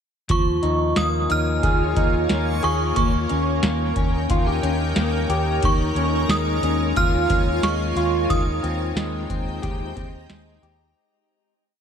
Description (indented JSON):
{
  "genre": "dream pop",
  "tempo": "90 BPM",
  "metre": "4/4",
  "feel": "straight",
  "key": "unclear",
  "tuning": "A4 = 440 Hz",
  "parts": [
    { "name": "synth chime", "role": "melody", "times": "0.3-10.3 s", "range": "Db6 to F6", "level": "-26 LUFS", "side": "right 3 dB", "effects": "ensemble chorus, ping-pong delay, slapback echo" },
    { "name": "shimmering ambient pad", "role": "sustained chords", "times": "1.2-10.9 s", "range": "Ab3 to Ab5", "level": "-27 LUFS", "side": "right 2 dB", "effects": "chorus, built-in reverb" },
    { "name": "electric guitar through a small old amp", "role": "arpeggios", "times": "0.3-11.5 s", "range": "Eb3 to Ab4", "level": "-25 LUFS", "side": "left 3 dB", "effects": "wide subtle chorus, ping-pong delay, slapback echo" },
    { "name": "vintage muted fingered electric bass", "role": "bass", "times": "0.3-10.9 s", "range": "Eb2", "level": "-24 LUFS", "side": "equal", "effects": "none" },
    { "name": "booming analog drum machine", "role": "drums", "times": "0.3-10.8 s", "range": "hi-hat, kick drum, snare drum", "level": "-24 LUFS", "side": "equal", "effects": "none" },
    { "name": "backwards swelling texture", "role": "texture", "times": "1.9-10.9 s", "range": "Bb4 to Bb5", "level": "-42 LUFS", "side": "right 2 dB", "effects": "none" }
  ],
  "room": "light reverb, digital ambience",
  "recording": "none",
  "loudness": "-19 LUFS",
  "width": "side -7 dB against mid",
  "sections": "0.3-11.0 verse",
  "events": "fade-out 8.3-11.0",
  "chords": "0.3 Db6/Eb; 3.0 Eb7; 5.6 Bbm7/Eb; 8.3 Abmaj7/Eb"
}